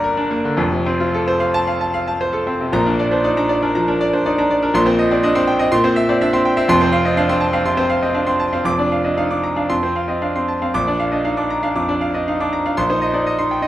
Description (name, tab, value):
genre	classical, virtuoso piano study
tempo	108-126 BPM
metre	4/4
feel	rubato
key	Bb major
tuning	A4 = 437 Hz
part	bright grand piano	solo	0.0-13.7 s	F1 to D6	-15 LUFS	equal	none
room	wet recital hall reverb, RT60 1.5 s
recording	none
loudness	-15 LUFS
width	side -13 dB against mid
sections	0.0-2.7 A section; 2.7-13.7 B section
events	none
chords	0.0 Gm; 0.6 F; 2.7 Bb; 4.7 Cm/Bb; 5.7 C7/Bb; 6.7 F; 8.6 Bb/F; 9.7 F; 10.8 Bb; 12.8 Cm/Bb